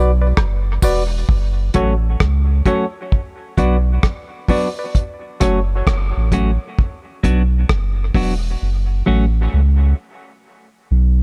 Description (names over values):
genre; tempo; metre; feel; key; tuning
dub reggae; 66 BPM; 4/4; swing 63% on 16ths; F# minor; A4 = 442 Hz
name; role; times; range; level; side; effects
percussive organ stab; stabs; 0.0-5.6 s; F#4 to D5; -26 LUFS; equal; chorus, dub echo
soft dub sub bass; bass; 0.0-11.2 s; E1 to C#2; -18 LUFS; equal; none
cloth-damped thuddy drum kit; drums; 0.4-8.4 s; hi-hat, kick drum, rim click; -20 LUFS; equal; none
woodblock and tambourine; percussion; 0.4-1.1 s; none; -33 LUFS; equal; dub echo
semi-hollow electric guitar; accompaniment; 1.7-9.2 s; F#3 to F#4; -24 LUFS; equal; dub echo
room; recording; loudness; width
little or no reverb; none; -18 LUFS; mono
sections
0.0-1.3 A section; 1.3-11.2 B section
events
break 0.0-1.3; part muted 8.6-11.2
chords
0.0 Bm; 1.3 F#m; 3.1 Bm; 4.9 F#m; 6.8 Bm; 8.6 F#m; 10.4 N.C.